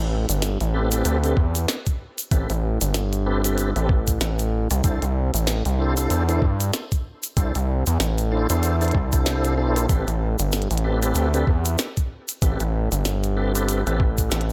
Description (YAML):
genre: glitch hop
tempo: 95 BPM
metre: 4/4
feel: swing 58% on 16ths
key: A minor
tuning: A4 = 442 Hz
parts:
  - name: gritty driven synth bass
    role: bass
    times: 0.0-14.5 s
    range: G1 to G2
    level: -24 LUFS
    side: equal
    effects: tube saturation
  - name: glitchy drum kit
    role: drums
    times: 0.3-14.5 s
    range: hi-hat, rim click, snare drum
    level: -31 LUFS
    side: equal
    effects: none
  - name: egg shaker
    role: percussion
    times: 0.3-14.5 s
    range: none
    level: -33 LUFS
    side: equal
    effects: none
  - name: tonewheel organ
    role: stabs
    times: 0.7-14.0 s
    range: C4 to C5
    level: -30 LUFS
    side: equal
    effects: overdrive, chorus vibrato, slow rotary speaker, sidechain pumping, analog delay
  - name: electronic kick drum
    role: drums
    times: 1.4-14.3 s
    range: none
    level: -24 LUFS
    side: equal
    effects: none
room: light reverb, digital ambience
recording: none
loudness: -22 LUFS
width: mono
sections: 0.0-14.5 A section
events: none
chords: 0.0 Am9; 4.8 C69; 9.9 Am9